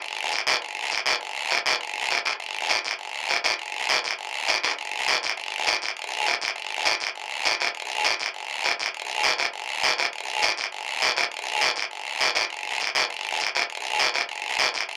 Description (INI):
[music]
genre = latin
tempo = 202 BPM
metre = 4/4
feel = straight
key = none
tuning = none
[part]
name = guiro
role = percussion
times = 0.0-15.0 s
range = none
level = -24 LUFS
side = equal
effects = none
[sound]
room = little or no reverb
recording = dry, close 1970s-style studio recording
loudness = -24 LUFS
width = mono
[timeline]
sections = 0.0-2.4 A section; 2.4-11.9 B section; 11.9-15.0 C section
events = none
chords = none